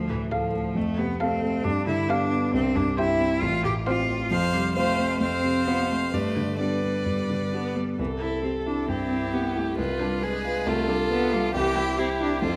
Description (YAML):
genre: quick classical-period movement for piano quartet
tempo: 135 BPM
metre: 4/4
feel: straight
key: C major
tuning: A4 = 440 Hz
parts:
  - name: clear cello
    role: second line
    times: 0.0-12.6 s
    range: E3 to G4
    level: -30 LUFS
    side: equal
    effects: none
  - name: dark grand piano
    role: accompaniment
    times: 0.0-12.6 s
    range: A1 to F5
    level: -29 LUFS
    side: equal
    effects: none
  - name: rich violin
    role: melody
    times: 0.3-12.6 s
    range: E4 to G5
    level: -33 LUFS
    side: equal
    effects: none
  - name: rich violin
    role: second line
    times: 0.3-12.6 s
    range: G4 to C5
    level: -33 LUFS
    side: equal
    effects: none
room: wet scoring stage reverb, RT60 1.5 s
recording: none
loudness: -25 LUFS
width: mono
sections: 0.0-8.0 A section; 8.0-12.6 B section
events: none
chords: 0.0 Dm; 0.8 F; 1.6 G7; 2.5 C; 3.4 F/A; 4.3 F; 6.1 G; 8.0 C; 9.8 Bdim7/C; 11.5 C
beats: 0.32 | 0.76 1.21 1.65 2.09 | 2.53 2.98 3.42 3.87 | 4.31 4.76 5.21 5.67 | 6.13 6.60 7.07 7.53 | 7.99 8.44 8.89 9.33 | 9.78 10.22 10.66 11.10 | 11.54 11.98 12.43